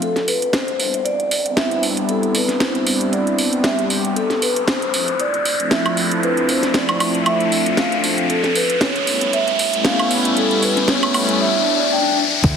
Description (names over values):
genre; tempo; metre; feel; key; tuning
nu-disco, nu disco; 116 BPM; 4/4; swing 55% on 16ths; unclear; A4 = 440 Hz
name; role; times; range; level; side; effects
vibraphone with medium mallets; melody; 0.0-12.2 s; A4 to G5; -21 LUFS; equal; ping-pong delay
house drum kit; drums; 0.0-12.6 s; crash cymbal, hi-hat, snare drum, woodblock; -21 LUFS; right 1 dB; studio reverb
riser, swell and impact; sound effects; 0.0-12.6 s; none; -22 LUFS; left 3 dB; none
warm analog pad; accompaniment; 0.8-12.6 s; F3 to G4; -21 LUFS; equal; chorus, cassette tape, sidechain pumping
fingered electric bass with an envelope filter; bass; 12.4-12.5 s; D2; -17 LUFS; equal; sidechain pumping
electronic kick drum; drums; 12.4-12.6 s; none; -17 LUFS; equal; studio reverb
room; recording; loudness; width
moderate echo chamber reverb, RT60 2.2 s; heavily compressed radio sound, multiband compression; -15 LUFS; side -7 dB against mid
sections
0.0-12.4 A section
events
build-up 0.0-12.4; riser 0.0-12.4; filter sweep on analog synth pad 0.0-12.4; swell 11.4-12.4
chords
0.0 Am11/G (rootless); 4.2 Dm9; 8.3 A7